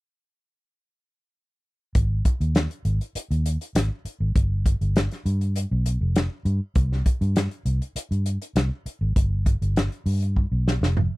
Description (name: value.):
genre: straight-eighth soul blues.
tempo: 100 BPM.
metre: 4/4.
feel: straight.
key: unclear.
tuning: A4 = 440 Hz.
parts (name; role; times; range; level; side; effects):
warm soul drum kit; drums; 1.9-11.1 s; hi-hat, kick drum, snare drum, toms; -23 LUFS; equal; none.
vintage muted fingered electric bass; bass; 2.0-11.1 s; F1 to G2; -23 LUFS; equal; none.
room: little or no reverb.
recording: none.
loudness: -21 LUFS.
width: side -21 dB against mid.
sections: 1.9-11.2 A section.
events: drum fill 10.4-11.2.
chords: none.